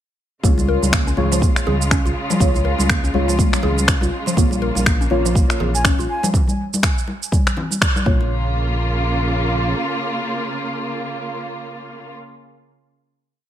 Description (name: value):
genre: afro house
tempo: 122 BPM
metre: 4/4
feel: swing 58% on 16ths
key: Bb minor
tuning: A4 = 440 Hz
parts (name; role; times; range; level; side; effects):
- muted studio string section; sustained chords; 0.4-12.1 s; Db3 to F4; -25 LUFS; right 1 dB; sidechain pumping
- mallet-like synth pluck; arpeggios; 0.4-8.5 s; F3 to Bb4; -25 LUFS; equal; chorus, phaser, sidechain pumping, dub echo
- deep mellow chord stab; stabs; 0.4-12.1 s; Ab3 to Db5; -25 LUFS; left 2 dB; chorus, phaser, sidechain pumping, dub echo
- smooth synth bass; bass; 0.4-9.7 s; Bb1 to Db2; -21 LUFS; equal; sidechain pumping
- electronic kick drum; drums; 0.4-8.2 s; none; -18 LUFS; equal; studio reverb
- electronic shaker and finger snaps; drums; 0.4-8.0 s; none; -22 LUFS; equal; studio reverb
- congas; percussion; 0.4-8.3 s; none; -26 LUFS; left 2 dB; none
- mellow silver concert flute; melody; 5.7-6.3 s; Ab5; -28 LUFS; left 1 dB; dub echo
room: light reverb, small room reverb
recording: none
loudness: -16 LUFS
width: side -11 dB against mid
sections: 0.4-8.3 groove; 8.3-12.2 final hit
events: band accent 7.8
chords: 0.4 Db; 4.4 Bbm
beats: | 0.44 0.93 1.42 1.91 | 2.40 2.90 3.39 3.88 | 4.37 4.86 5.36 5.85 | 6.34 6.83 7.32 7.81 | 8.31 8.80 9.29 9.78 | 10.27 10.77 11.26 11.75